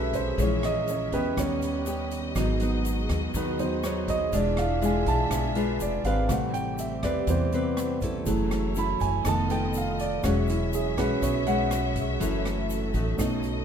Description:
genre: bossa nova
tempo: 122 BPM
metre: 4/4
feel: straight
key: E major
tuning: A4 = 440 Hz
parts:
  - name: nylon-string guitar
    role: accompaniment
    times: 0.0-13.6 s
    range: F#2 to B4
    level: -31 LUFS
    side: left 4 dB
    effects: none
  - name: warm grand piano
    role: accompaniment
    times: 0.0-13.6 s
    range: C3 to B5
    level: -28 LUFS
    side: right 3 dB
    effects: none
  - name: rich studio string section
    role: sustained chords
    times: 0.0-13.6 s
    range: A3 to E5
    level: -34 LUFS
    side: equal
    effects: none
  - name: upright bass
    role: bass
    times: 0.0-13.6 s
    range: E1 to E2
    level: -30 LUFS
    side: equal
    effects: none
  - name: swinging big-band drum kit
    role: drums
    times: 0.1-13.6 s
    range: hi-hat, kick drum, rim click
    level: -35 LUFS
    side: equal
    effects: none
  - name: egg shaker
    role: percussion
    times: 0.1-13.6 s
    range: none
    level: -43 LUFS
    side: left 8 dB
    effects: none
room: light reverb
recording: minimal, uncompressed stereo recording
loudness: -24 LUFS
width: side -8 dB against mid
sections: 0.0-13.6 A section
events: grand piano solo 0.0-13.6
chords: 0.4 A#m7b5; 1.4 D#aug7; 2.4 G#m7; 4.3 E7b9; 6.3 Am9; 8.3 F#m7; 9.3 F7#11; 10.2 E69; 12.2 F#m7

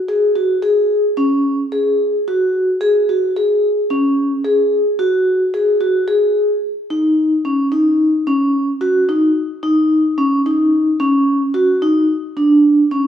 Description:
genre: progressive instrumental, progressive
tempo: 110 BPM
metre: 5/4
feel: straight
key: unclear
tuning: A4 = 440 Hz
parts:
  - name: vibraphone with soft mallets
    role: solo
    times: 0.1-13.1 s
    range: Db4 to Ab4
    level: -13 LUFS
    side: equal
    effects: none
room: wet large studio reverb, RT60 1.3 s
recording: band playing live in one room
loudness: -13 LUFS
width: side -9 dB against mid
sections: 0.0-6.6 A section; 6.6-13.1 B section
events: none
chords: none

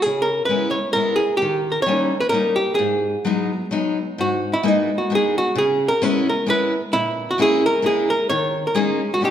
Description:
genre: musette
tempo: 131 BPM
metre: 3/4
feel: straight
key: G# minor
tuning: A4 = 436 Hz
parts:
  - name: archtop guitar, miked and amplified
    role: melody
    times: 0.0-9.3 s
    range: D#4 to C#5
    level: -19 LUFS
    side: right 1 dB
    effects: none
  - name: picked steel-string acoustic guitar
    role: accompaniment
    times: 0.1-9.3 s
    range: G#2 to E4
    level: -22 LUFS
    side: left 3 dB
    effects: none
room: wet recital hall reverb, RT60 1.7 s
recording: none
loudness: -17 LUFS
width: side -10 dB against mid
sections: 0.0-4.2 A section; 4.2-9.3 B section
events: none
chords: 0.1 C#m7; 1.4 D#7; 2.8 G#m7; 4.2 G#madd9; 5.6 C#m7; 6.9 A#m7b5; 8.3 D#7sus4

